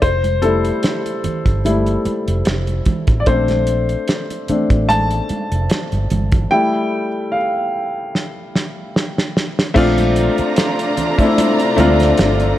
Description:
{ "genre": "lush 1970s-style soul", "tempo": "74 BPM", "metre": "4/4", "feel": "swing 54% on 16ths", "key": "unclear", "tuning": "A4 = 440 Hz", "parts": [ { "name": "clear grand piano", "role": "accompaniment", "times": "0.0-12.6 s", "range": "G3 to A5", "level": "-18 LUFS", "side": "left 2 dB", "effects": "none" }, { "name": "vintage muted fingered electric bass", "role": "bass", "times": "0.0-12.5 s", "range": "F1 to D2", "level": "-18 LUFS", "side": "right 1 dB", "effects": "none" }, { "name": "cloth-damped thuddy drum kit", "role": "drums", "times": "0.0-12.6 s", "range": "crash cymbal, hi-hat, kick drum, snare drum", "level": "-19 LUFS", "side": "right 1 dB", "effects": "none" }, { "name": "congas", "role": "percussion", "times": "0.2-12.6 s", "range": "none", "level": "-26 LUFS", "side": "right 4 dB", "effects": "none" }, { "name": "warm symphonic violin section", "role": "second line", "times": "9.8-12.6 s", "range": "F4 to Bb5", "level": "-21 LUFS", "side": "right 2 dB", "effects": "none" }, { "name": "warm studio string section", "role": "sustained chords", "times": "9.8-12.6 s", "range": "C3 to D4", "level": "-24 LUFS", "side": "equal", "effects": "none" } ], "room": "light reverb, small room ambience", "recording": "none", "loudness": "-14 LUFS", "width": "side -13 dB against mid", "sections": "0.0-9.8 A section; 9.8-12.6 B section", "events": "grand piano solo 0.0-9.8; break 6.5-9.8; drum fill 8.1-9.8", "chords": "0.0 Fmaj9; 3.3 Bbmaj9; 6.5 Fmaj9; 9.8 Bbmaj9" }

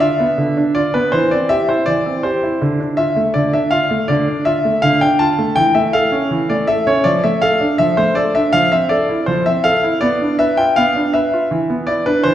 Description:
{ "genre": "classical-period piano sonatina", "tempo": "81 BPM", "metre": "4/4", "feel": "straight", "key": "unclear", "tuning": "A4 = 440 Hz", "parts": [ { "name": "clear concert grand piano", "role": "solo", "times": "0.0-12.3 s", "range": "D3 to A5", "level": "-13 LUFS", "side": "equal", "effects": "none" } ], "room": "wet recital hall reverb, RT60 1.8 s", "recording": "heard from further back in the room", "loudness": "-13 LUFS", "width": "side -11 dB against mid", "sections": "0.0-12.3 A section", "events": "none", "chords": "0.0 Dm69; 1.1 C/E; 2.6 Dm; 5.6 A/E; 7.1 Dm/F; 10.0 Bdim; 11.5 E5" }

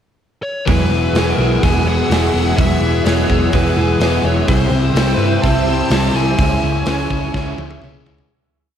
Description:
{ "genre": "rock, shoegaze and dream pop", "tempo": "126 BPM", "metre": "4/4", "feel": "straight", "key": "unclear", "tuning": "A4 = 444 Hz", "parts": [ { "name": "fuzz lead guitar", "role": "melody", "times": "0.4-7.8 s", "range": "B4 to A5", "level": "-23 LUFS", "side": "left 1 dB", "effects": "distortion, analog delay" }, { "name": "sweeping resonant pad", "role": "sustained chords", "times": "0.7-8.3 s", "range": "G#4 to E6", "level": "-25 LUFS", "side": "equal", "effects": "chorus" }, { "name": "picked twelve-string acoustic guitar", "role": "arpeggios", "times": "0.7-8.3 s", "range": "F#3 to G#4", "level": "-26 LUFS", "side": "right 6 dB", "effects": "none" }, { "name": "direct-recorded clean electric guitar", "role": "riff", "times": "0.7-8.3 s", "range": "C3 to G#4", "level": "-22 LUFS", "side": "right 8 dB", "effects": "reverse reverb" }, { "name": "overdriven semi-hollow guitar", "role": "riff", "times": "0.7-8.3 s", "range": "C3 to E4", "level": "-20 LUFS", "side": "left 7 dB", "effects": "wide subtle chorus" }, { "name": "hollow-body short-scale picked electric bass", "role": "bass", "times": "0.7-8.2 s", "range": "E1 to G2", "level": "-19 LUFS", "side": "equal", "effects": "none" }, { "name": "big rock drum kit", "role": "drums", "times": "0.7-8.3 s", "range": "hi-hat, kick drum, snare drum, toms", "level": "-20 LUFS", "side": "equal", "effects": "none" } ], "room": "moderate lush hall reverb, RT60 1.7 s, small room ambience", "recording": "dreamy mix soaked in reverb", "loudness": "-13 LUFS", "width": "side -9 dB against mid", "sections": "0.0-0.7 pickup bar; 0.7-8.3 verse", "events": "fade-out 6.4-8.3; drum fill 7.3-8.3", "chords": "0.0 N.C.; 0.7 Eadd9; 4.5 C; 6.4 C#m" }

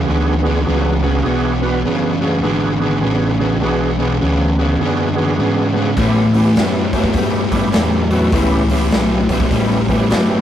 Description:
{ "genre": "blues rock power trio and southern rock", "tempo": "102 BPM", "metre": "4/4", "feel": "swing 64% on 8ths", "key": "E mixolydian", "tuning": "A4 = 442 Hz", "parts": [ { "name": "overdriven tonewheel organ", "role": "sustained chords", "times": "0.0-10.4 s", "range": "B3 to B4", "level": "-21 LUFS", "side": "right 2 dB", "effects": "chorus vibrato, slow rotary speaker" }, { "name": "fuzz guitar", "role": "riff", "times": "0.0-10.4 s", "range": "E2 to G3", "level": "-17 LUFS", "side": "equal", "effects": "distortion" }, { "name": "overdriven fingered electric bass", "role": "bass", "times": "0.0-10.4 s", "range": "F#1 to A2", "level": "-20 LUFS", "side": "equal", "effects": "none" }, { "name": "raw garage drum kit", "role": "drums", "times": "6.0-10.3 s", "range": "hi-hat, kick drum, snare drum", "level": "-19 LUFS", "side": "left 1 dB", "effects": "none" } ], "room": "moderate small room reverb, RT60 0.5 s", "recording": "rough rehearsal-room recording, warm saturation", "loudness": "-13 LUFS", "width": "side -10 dB against mid", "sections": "0.0-10.4 A section", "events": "none", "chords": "0.0 E7; 6.0 A7" }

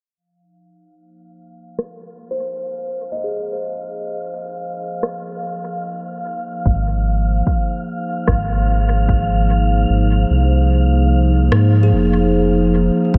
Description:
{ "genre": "ambient dub", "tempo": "74 BPM", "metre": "4/4", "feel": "straight", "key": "unclear", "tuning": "A4 = 441 Hz", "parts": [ { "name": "warbly tape-like pad", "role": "sustained chords", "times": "0.2-13.2 s", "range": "F3 to C5", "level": "-23 LUFS", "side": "equal", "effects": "chorus, built-in reverb" }, { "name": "wind-like tuned noise texture", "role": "texture", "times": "2.6-13.2 s", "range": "F5", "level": "-30 LUFS", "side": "equal", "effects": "built-in reverb" }, { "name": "electronic rim click", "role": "drums", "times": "1.8-11.7 s", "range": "none", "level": "-31 LUFS", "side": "equal", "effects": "overdrive, dub echo" }, { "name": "kalimba", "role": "arpeggios", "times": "2.3-5.7, 11.8-13.2 s", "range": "Ab4 to Eb5", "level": "-29 LUFS", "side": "equal", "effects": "low-pass filter, tape echo" }, { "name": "round analog bass", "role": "bass", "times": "6.7-13.2 s", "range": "F1 to Ab2", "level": "-17 LUFS", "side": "equal", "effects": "none" }, { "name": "electronic kick drum", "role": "drums", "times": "6.7-13.2 s", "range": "none", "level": "-22 LUFS", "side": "equal", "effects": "overdrive" } ], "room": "moderate huge ambient reverb, RT60 5.1 s", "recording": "dreamy mix soaked in reverb, low-pass filter", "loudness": "-18 LUFS", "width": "mono", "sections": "0.2-13.1 A section", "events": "filter sweep on ambient pad 0.2-13.1; filter sweep on kalimba 0.2-13.1; filter sweep 0.2-13.1; kick drops out 9.9-13.1", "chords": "0.2 Ab6" }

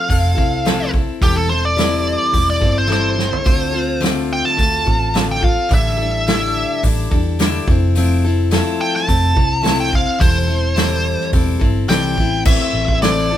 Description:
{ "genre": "folk rock and heartland rock", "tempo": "107 BPM", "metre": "4/4", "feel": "straight", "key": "unclear", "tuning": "A4 = 442 Hz", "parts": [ { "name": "bluesy overdriven lead guitar", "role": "melody", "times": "0.0-13.4 s", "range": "G4 to A5", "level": "-19 LUFS", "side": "right 1 dB", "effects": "distortion" }, { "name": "picked plugged-in steel-string acoustic guitar", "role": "accompaniment", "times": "0.0-13.4 s", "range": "A2 to A4", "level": "-21 LUFS", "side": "left 5 dB", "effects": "none" }, { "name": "hollow-body short-scale picked electric bass", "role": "bass", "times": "0.1-13.4 s", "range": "E1 to E2", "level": "-20 LUFS", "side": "equal", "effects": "none" }, { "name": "natural country drum kit", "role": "drums", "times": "0.1-13.2 s", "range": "crash cymbal, hi-hat, kick drum, snare drum, toms", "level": "-18 LUFS", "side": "right 1 dB", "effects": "none" } ], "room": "moderate studio reverb, RT60 0.8 s", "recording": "band playing live in one room", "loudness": "-14 LUFS", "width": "side -11 dB against mid", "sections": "0.0-12.5 A section", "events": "lead electric guitar solo 0.0-12.5; drum fill 2.9-3.5", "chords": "0.0 Fmaj7; 1.2 C6/E; 3.5 Dm7; 5.7 A7sus4; 7.7 Fmaj7; 10.2 C6/E; 12.5 Am" }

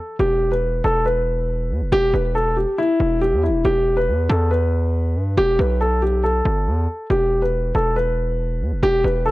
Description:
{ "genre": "hip hop, drill", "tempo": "139 BPM", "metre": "4/4", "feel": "half-time", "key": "E minor", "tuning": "A4 = 440 Hz", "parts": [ { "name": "dark baby grand piano", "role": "melody", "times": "0.0-9.3 s", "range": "E4 to B4", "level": "-19 LUFS", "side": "equal", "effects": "none" }, { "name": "distorted 808-style bass", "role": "bass", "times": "0.2-9.3 s", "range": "E1 to G2", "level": "-20 LUFS", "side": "equal", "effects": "distortion" } ], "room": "small room reverb", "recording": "dry, gritty hardware recording", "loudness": "-17 LUFS", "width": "side -18 dB against mid", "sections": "0.0-9.3 A section", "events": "none", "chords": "0.2 E5; 3.6 Em; 7.1 E5" }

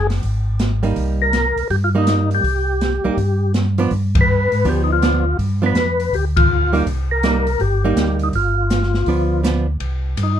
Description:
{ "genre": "soul jazz organ trio", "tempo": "163 BPM", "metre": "4/4", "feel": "swing 64% on 8ths", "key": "C minor", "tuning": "A4 = 440 Hz", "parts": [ { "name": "percussive tonewheel organ", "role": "melody", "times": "0.0-10.4 s", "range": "Eb4 to B4", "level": "-19 LUFS", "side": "left 2 dB", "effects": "slow rotary speaker, chorus vibrato" }, { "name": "mellow tonewheel organ", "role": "bass", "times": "0.0-10.4 s", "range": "F#1 to Ab2", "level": "-19 LUFS", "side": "equal", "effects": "chorus vibrato, slow rotary speaker" }, { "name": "open jazz drum kit", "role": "drums", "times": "0.1-10.3 s", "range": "hi-hat, kick drum, ride cymbal, snare drum", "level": "-22 LUFS", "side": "equal", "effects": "none" }, { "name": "archtop guitar, miked and amplified", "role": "accompaniment", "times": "0.8-9.7 s", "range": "F3 to Eb4", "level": "-20 LUFS", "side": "right 5 dB", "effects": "none" } ], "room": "light reverb", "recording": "minimal, uncompressed stereo recording", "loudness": "-15 LUFS", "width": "side -10 dB against mid", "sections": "0.0-9.8 A section", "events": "band accent 4.1, 6.3", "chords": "0.0 Fm7 (rootless); 1.0 Cm7; 3.9 G7; 6.9 Cm7; 8.3 G7; 9.8 Cm" }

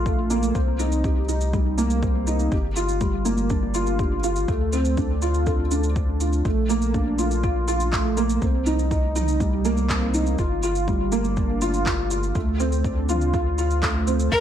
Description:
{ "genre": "piano and strings electronica", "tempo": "122 BPM", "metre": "4/4", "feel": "straight", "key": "unclear", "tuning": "A4 = 439 Hz", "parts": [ { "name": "felt-muted upright piano", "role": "riff", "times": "0.0-14.4 s", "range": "G3 to A4", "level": "-23 LUFS", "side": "right 1 dB", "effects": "analog chorus, ping-pong delay" }, { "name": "warm sub bass", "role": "bass", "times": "0.0-14.4 s", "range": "G1 to D2", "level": "-24 LUFS", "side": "equal", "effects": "sidechain pumping" }, { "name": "electronic kick drum", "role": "drums", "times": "0.1-14.4 s", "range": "none", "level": "-25 LUFS", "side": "equal", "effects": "overdrive" }, { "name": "organic electronic drum kit", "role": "drums", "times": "0.1-14.4 s", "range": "handclaps, shaker, toms", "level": "-31 LUFS", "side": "equal", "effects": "overdrive" }, { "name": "rich violin", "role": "melody", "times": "14.3-14.4 s", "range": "Bb4", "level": "-16 LUFS", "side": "left 2 dB", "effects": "none" }, { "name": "rich symphonic string section", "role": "sustained chords", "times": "14.3-14.4 s", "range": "Bb2 to A5", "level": "-42 LUFS", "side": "left 2 dB", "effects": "none" } ], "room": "moderate plate reverb, RT60 1.2 s, studio reverb", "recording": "dreamy mix soaked in reverb", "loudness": "-20 LUFS", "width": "side -10 dB against mid", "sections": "0.0-14.4 A section", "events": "none", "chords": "0.0 Bbmaj7; 0.6 Cm7; 2.5 Gm7; 4.5 Dm7; 6.5 Bbmaj7; 8.4 Cm7; 10.4 Gm7; 12.4 Dm7" }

